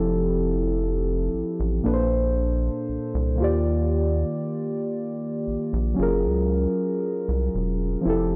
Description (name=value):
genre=contemporary R&B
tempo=58 BPM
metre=4/4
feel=straight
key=unclear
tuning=A4 = 439 Hz
part: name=muted felt-like synth keys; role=accompaniment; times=0.0-8.4 s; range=Bb2 to D5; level=-26 LUFS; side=equal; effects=chorus
part: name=rubbery square bass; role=bass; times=0.0-8.4 s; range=E1 to Eb2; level=-27 LUFS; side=equal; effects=none
room=little or no reverb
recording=dry, gritty hardware recording, transformer saturation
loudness=-24 LUFS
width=mono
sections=0.0-8.4 A section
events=none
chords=0.0 Fmaj9; 1.8 Bbmaj9; 3.4 Ebmaj9; 6.0 Gbmaj9